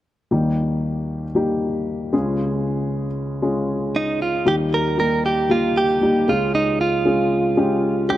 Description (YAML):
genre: pop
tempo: 116 BPM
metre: 4/4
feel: straight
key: Eb major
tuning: A4 = 438 Hz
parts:
  - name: dark upright piano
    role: accompaniment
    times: 0.3-8.2 s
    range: Db2 to Ab4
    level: -20 LUFS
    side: left 1 dB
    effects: none
  - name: direct-recorded clean electric guitar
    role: melody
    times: 4.0-8.2 s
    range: Eb4 to Bb4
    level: -20 LUFS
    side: right 3 dB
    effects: none
room: moderate plate reverb, RT60 3.3 s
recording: dark, warm production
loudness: -18 LUFS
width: side -13 dB against mid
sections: 0.3-4.5 A section; 4.5-8.2 B section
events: none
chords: 0.3 Eb; 2.1 Db; 4.5 Eb; 6.3 Db